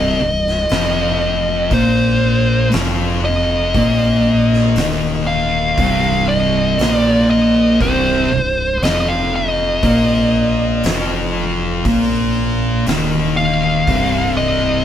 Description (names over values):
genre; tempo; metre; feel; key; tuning
stoner and doom metal; 59 BPM; 4/4; straight; C minor; A4 = 436 Hz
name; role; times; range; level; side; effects
fuzz lead guitar; melody; 0.0-14.8 s; C5 to F5; -18 LUFS; left 1 dB; distortion
thick fuzz guitar; riff; 0.0-14.8 s; C2 to Bb3; -18 LUFS; left 4 dB; distortion
thick fuzz guitar; riff; 0.0-14.8 s; C2 to Bb3; -21 LUFS; right 6 dB; distortion
growling fingered electric bass; bass; 0.0-14.8 s; C1 to Bb1; -22 LUFS; equal; overdrive
oversized low-tuned drum kit; drums; 0.5-14.1 s; hi-hat, kick drum, snare drum; -24 LUFS; equal; none
room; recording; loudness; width
light reverb; band playing live in one room; -13 LUFS; side -10 dB against mid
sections
0.0-14.8 A section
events
none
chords
0.0 Cm